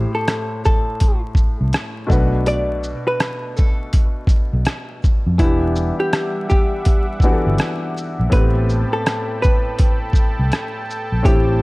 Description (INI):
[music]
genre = lo-fi hip hop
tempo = 82 BPM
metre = 4/4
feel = swing 63% on 16ths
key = unclear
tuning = A4 = 441 Hz
[part]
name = hollow-body jazz guitar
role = melody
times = 0.0-11.6 s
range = E4 to D5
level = -23 LUFS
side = equal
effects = none
[part]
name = felt-muted upright piano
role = accompaniment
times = 0.0-11.6 s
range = A2 to F#5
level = -24 LUFS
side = left 1 dB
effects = cassette tape
[part]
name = vintage muted fingered electric bass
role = bass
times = 0.0-11.6 s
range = E1 to F2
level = -18 LUFS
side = equal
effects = none
[part]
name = boom bap sampler-style drum kit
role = drums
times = 0.3-11.5 s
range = hi-hat, kick drum, rim click, shaker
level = -17 LUFS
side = equal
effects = none
[part]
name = warm analog pad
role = sustained chords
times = 5.4-11.6 s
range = G3 to D6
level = -28 LUFS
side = right 1 dB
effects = chorus
[sound]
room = little or no reverb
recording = vinyl crackle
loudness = -16 LUFS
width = side -22 dB against mid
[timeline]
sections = 0.0-11.6 A section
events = none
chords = 0.0 Am7; 2.1 Bm7; 5.4 Em9; 8.3 Am9